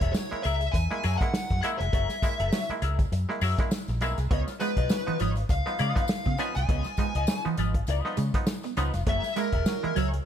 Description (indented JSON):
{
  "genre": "funk",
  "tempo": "101 BPM",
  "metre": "4/4",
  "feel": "swing 56% on 16ths",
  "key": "unclear",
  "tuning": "A4 = 439 Hz",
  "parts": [
    { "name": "fuzz lead guitar", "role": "melody", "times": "0.0-10.1 s", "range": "Bb4 to Ab5", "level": "-32 LUFS", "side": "left 1 dB", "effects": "distortion" },
    { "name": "electric guitar at the edge of break-up", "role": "accompaniment", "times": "0.0-10.2 s", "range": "F4 to Fb5", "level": "-35 LUFS", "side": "left 6 dB", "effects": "wah" },
    { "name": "muted clav", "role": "stabs", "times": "0.0-10.0 s", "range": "Db3 to Fb4", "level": "-36 LUFS", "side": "right 2 dB", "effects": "none" },
    { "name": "vintage muted fingered electric bass", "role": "bass", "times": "0.0-10.2 s", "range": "Fb1 to Db3", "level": "-28 LUFS", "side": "equal", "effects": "none" },
    { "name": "warm soul drum kit", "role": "drums", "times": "0.0-10.3 s", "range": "hi-hat, kick drum, snare drum", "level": "-29 LUFS", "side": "equal", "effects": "none" },
    { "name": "tambourine", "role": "percussion", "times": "0.1-10.1 s", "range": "none", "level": "-45 LUFS", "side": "left 7 dB", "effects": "none" },
    { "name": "semi-hollow electric guitar", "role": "riff", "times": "4.3-10.1 s", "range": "Fb3 to Db4", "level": "-33 LUFS", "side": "right 7 dB", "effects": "analog chorus" }
  ],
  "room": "little or no reverb",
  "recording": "none",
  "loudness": "-24 LUFS",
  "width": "side -9 dB against mid",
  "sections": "0.0-10.3 A section",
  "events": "break 0.0-4.3",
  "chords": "0.0 Gb9; 4.3 Db9; 9.1 Gb9"
}